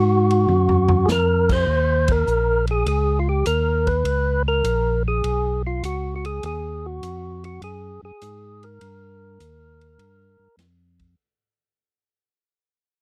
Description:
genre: soul jazz organ trio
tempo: 101 BPM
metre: 4/4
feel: swing 69% on 8ths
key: unclear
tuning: A4 = 440 Hz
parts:
  - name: percussive tonewheel organ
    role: melody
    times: 0.0-10.6 s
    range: F4 to C5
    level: -24 LUFS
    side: equal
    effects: slow rotary speaker, overdrive
  - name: tonewheel organ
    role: bass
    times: 0.0-11.2 s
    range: Bb1 to Ab2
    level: -25 LUFS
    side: equal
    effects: slow rotary speaker
  - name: swinging big-band drum kit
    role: drums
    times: 0.3-11.1 s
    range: crash cymbal, hi-hat, kick drum, ride cymbal, snare drum, toms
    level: -28 LUFS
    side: equal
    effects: none
room: little or no reverb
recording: dry, close 1970s-style studio recording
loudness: -20 LUFS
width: mono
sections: 0.0-11.2 A section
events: fade-out 0.0-11.2; drum fill 0.5-1.1; band accent 2.0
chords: 0.0 Ab7(no3); 1.7 Eb5; 4.1 Db5; 6.4 Ab5; 8.8 Eb

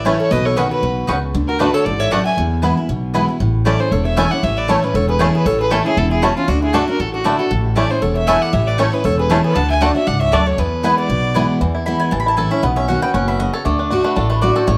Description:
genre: bluegrass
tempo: 234 BPM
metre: 4/4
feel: swing 54% on 8ths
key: unclear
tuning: A4 = 440 Hz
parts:
  - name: rich fiddle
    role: melody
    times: 0.0-11.5 s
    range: E4 to A5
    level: -23 LUFS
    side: equal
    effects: tape echo
  - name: lap resonator guitar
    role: second line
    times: 0.0-11.5 s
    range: A3 to F#5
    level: -26 LUFS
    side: equal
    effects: tape echo
  - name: picked steel-string acoustic guitar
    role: accompaniment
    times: 0.0-14.8 s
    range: E2 to F#4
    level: -22 LUFS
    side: equal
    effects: none
  - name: mandolin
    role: stabs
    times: 0.0-14.8 s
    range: A3 to C#6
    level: -24 LUFS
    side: equal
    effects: none
  - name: upright bass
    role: bass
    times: 0.0-14.8 s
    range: E1 to E2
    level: -23 LUFS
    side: equal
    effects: none
  - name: bluegrass banjo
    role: melody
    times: 0.1-14.8 s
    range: E3 to A4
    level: -24 LUFS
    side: equal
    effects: none
room: moderate studio reverb, RT60 0.7 s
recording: none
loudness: -17 LUFS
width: mono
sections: 0.0-3.4 A section; 3.4-11.6 B section; 11.6-14.8 C section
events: mandolin solo 11.6-14.8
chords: 0.3 Badd9; 1.3 D; 2.4 E; 3.4 A; 6.5 D; 7.5 A; 9.6 D; 10.6 E; 12.1 A; 12.6 Badd9; 13.7 D

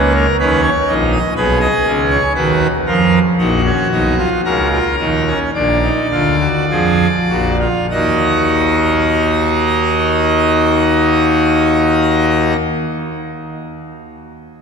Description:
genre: classical, baroque-style 3-part fugue for pipe organ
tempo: 48-63 BPM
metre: 4/4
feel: straight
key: Eb minor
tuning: A4 = 445 Hz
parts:
  - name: pipe organ, full organ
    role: solo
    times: 0.0-12.6 s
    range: Bb1 to Eb5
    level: -12 LUFS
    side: equal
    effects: none
room: wet cathedral reverb, RT60 5.3 s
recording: minimal, uncompressed stereo recording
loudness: -12 LUFS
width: side -6 dB against mid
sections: 0.0-7.9 A section; 7.9-12.8 B section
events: slowing down 0.0-7.9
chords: 0.0 Eb5/Db; 1.4 Abm/Cb; 3.4 Ebm/Bb; 5.5 Bb7; 7.9 Ebm

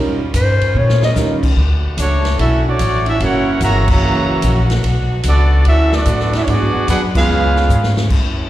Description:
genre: jazz, big band swing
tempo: 147 BPM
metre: 4/4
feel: swing 66% on 8ths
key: D major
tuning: A4 = 440 Hz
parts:
  - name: warm concert grand piano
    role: accompaniment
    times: 0.0-1.4 s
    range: G3 to Bb4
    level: -20 LUFS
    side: right 3 dB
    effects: slapback echo
  - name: bright saxophone section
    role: sustained chords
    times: 0.0-8.5 s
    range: Eb3 to F#4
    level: -26 LUFS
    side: equal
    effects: none
  - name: upright bass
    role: bass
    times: 0.0-8.4 s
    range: F#1 to Bb2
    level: -15 LUFS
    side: equal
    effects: none
  - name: swinging big-band drum kit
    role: drums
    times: 0.3-8.2 s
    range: crash cymbal, hi-hat, kick drum, ride cymbal, snare drum, toms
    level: -22 LUFS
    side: equal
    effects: none
  - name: growling clarinet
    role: melody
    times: 0.4-1.1 s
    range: C5 to Eb5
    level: -18 LUFS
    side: left 2 dB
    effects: slapback echo
  - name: clear trumpet section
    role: melody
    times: 2.0-7.9 s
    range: A3 to A#5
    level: -18 LUFS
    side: right 1 dB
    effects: slapback echo
  - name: mellow trombone section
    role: second line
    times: 2.0-7.9 s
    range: C#3 to F#4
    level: -21 LUFS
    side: right 2 dB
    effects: none
room: studio ambience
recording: live gig heard through the venue's PA, recital hall reverb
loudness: -12 LUFS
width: side -14 dB against mid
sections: 0.0-1.6 A section; 1.6-8.5 B section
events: clarinet solo 0.0-1.6; drum fill 0.8-1.2, 7.7-8.1; band accent 3.8, 7.1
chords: 0.0 Eb9; 1.6 Dmaj7; 3.2 F#7; 4.8 Bm7; 6.5 G#m7b5; 7.3 C#7

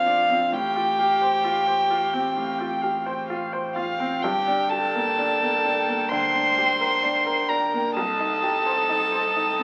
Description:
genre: neoclassical piano and strings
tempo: 64 BPM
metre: 4/4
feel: rubato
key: G minor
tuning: A4 = 442 Hz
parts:
  - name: rich violin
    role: melody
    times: 0.0-9.6 s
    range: F5 to C6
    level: -25 LUFS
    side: equal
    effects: none
  - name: warm cello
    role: second line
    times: 0.0-9.6 s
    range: F4 to C5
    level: -30 LUFS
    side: equal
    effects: none
  - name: bright upright piano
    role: accompaniment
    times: 0.0-9.6 s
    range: C2 to C5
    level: -30 LUFS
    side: equal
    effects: none
  - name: dark viola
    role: accompaniment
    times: 0.0-9.6 s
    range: C5 to G5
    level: -35 LUFS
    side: equal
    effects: none
  - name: punchy sub bass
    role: bass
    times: 0.0-9.6 s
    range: G1 to C2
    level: -50 LUFS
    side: equal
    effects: none
room: moderate large studio reverb, RT60 1.1 s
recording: very old 78 rpm record, vinyl crackle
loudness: -23 LUFS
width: mono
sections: 0.0-9.6 A section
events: none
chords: 0.0 Bbadd9; 0.5 Fadd9/A; 4.2 Gmadd9; 8.0 Cm

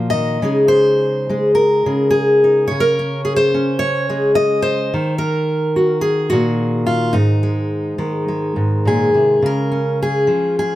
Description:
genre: folk, solo fingerstyle acoustic guitar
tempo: 106 BPM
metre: 4/4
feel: rubato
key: Db major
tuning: A4 = 440 Hz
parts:
  - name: fingerpicked steel-string acoustic guitar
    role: solo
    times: 0.0-10.8 s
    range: Ab2 to Eb5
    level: -14 LUFS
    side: equal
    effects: none
room: wet studio reverb, RT60 0.7 s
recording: none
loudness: -14 LUFS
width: side -14 dB against mid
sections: 0.0-9.4 A section; 9.4-10.8 B section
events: none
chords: 0.4 Dbsus2; 4.9 Ebm; 7.1 Ab5; 9.4 Db

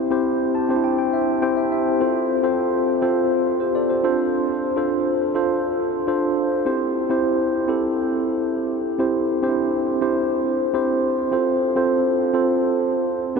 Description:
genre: pop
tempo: 103 BPM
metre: 4/4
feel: straight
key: C major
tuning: A4 = 440 Hz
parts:
  - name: mellow tine electric piano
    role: solo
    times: 0.0-13.4 s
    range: B3 to A5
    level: -18 LUFS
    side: equal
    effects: slow stereo tremolo, analog delay
room: wet huge ambient reverb, RT60 8.0 s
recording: dreamy mix soaked in reverb, nothing above 7.8 kHz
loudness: -18 LUFS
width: side -5 dB against mid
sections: 0.0-13.4 A section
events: tine electric piano fill 0.3-2.0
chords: 0.0 C; 2.0 F/C; 4.0 Dm7; 6.7 C; 11.3 F/C

